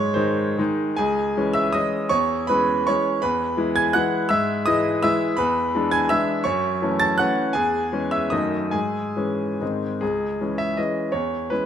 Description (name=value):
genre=classical, romantic triple-time dance for piano with dotted rhythms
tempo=130-178 BPM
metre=3/4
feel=rubato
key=C# minor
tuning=A4 = 441 Hz
part: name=bright grand piano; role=solo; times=0.0-11.7 s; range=C#2 to A6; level=-20 LUFS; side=equal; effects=none
room=moderate recital hall reverb, RT60 1.6 s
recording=close, detailed microphones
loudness=-20 LUFS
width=side -9 dB against mid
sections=1.0-10.0 A section; 10.0-11.7 B section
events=none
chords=0.0 G#; 1.0 C#m; 2.1 C#m/E; 3.2 E; 4.3 E/G#; 5.4 E7; 6.4 F#m7; 7.5 C#m/E; 8.3 D#dim/F#; 8.7 C#m/G#; 9.6 G#; 10.0 C#m; 11.1 C#m/E